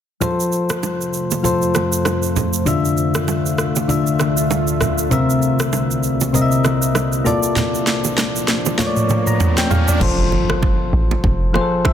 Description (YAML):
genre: afrobeats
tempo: 98 BPM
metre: 4/4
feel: swing 58% on 16ths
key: unclear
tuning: A4 = 441 Hz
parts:
  - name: soft electric-piano-like synth keys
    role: accompaniment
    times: 0.2-11.9 s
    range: C3 to Bb5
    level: -19 LUFS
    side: left 3 dB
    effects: chorus
  - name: deep dark ambient pad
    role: sustained chords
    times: 1.0-10.0 s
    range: C2 to E5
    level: -24 LUFS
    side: right 1 dB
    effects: chorus, built-in reverb
  - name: afro-pop drum kit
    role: drums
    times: 0.2-11.9 s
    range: crash cymbal, kick drum, rim click, shaker, snare drum, toms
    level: -21 LUFS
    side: right 1 dB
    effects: none
  - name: congas and bongos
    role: percussion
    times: 0.2-11.9 s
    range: none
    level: -25 LUFS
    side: right 6 dB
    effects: none
  - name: riser and impact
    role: sound effects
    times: 8.5-11.9 s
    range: none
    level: -26 LUFS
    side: right 1 dB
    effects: none
  - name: deep log drum bass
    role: bass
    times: 10.0-11.6 s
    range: F1 to A1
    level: -18 LUFS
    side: equal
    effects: none
room: light reverb, digital ambience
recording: dense, heavily limited modern master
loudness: -15 LUFS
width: side -9 dB against mid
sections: 0.2-10.0 A section; 10.0-11.9 B section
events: drum fill 7.6-10.0; riser 8.5-10.0; hi-hats muted 10.0-11.9; impact 10.0-11.9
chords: 0.2 F; 2.7 Dmadd9; 5.1 C7; 7.3 Bbmaj7; 10.0 F